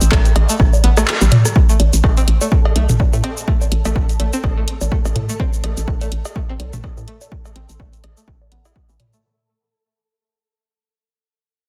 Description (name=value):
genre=minimal techno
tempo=125 BPM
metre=4/4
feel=swing 57% on 16ths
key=A minor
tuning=A4 = 440 Hz
part: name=hollow knocking FM bass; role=bass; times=0.0-9.0 s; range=A1 to A2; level=-19 LUFS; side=equal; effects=sidechain pumping
part: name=punchy analog drum machine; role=drums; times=0.0-9.2 s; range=handclaps, hi-hat, shaker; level=-25 LUFS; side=equal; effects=none
part: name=string-like resonator pluck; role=riff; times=0.1-9.2 s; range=E3 to E4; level=-29 LUFS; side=equal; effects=chorus, phaser, sidechain pumping, tape echo
part: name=electronic kick drum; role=drums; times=0.1-8.9 s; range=none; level=-18 LUFS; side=equal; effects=none
part: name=booming analog drum machine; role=percussion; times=0.1-9.1 s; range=cowbell, rim click, toms, woodblock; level=-23 LUFS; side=equal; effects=soft clipping on snare
part: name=flickering grainy texture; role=texture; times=1.9-9.2 s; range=A4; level=-37 LUFS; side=equal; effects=built-in reverb, sidechain pumping
room=little or no reverb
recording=dense, heavily limited modern master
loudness=-16 LUFS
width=mono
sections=0.0-1.6 A section; 1.6-9.2 B section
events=drop 0.0-1.6; kick drops out 1.1-1.6; band accent 1.1; fade-out 1.6-9.2; filter sweep on synth pluck 1.6-9.2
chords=none